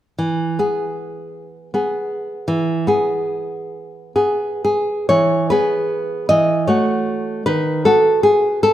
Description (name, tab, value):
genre	romantic piece for solo classical guitar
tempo	39-54 BPM (dotted quarters)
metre	6/8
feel	rubato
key	E major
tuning	A4 = 440 Hz
part	nylon-string guitar	solo	0.2-8.7 s	D#3 to D#5	-16 LUFS	equal	none
room	moderate scoring stage reverb, RT60 1.5 s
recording	minimal, uncompressed stereo recording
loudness	-16 LUFS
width	side -12 dB against mid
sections	0.2-5.1 A section; 5.1-8.7 B section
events	none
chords	0.2 E; 6.3 F#m7/E; 7.5 B7/D#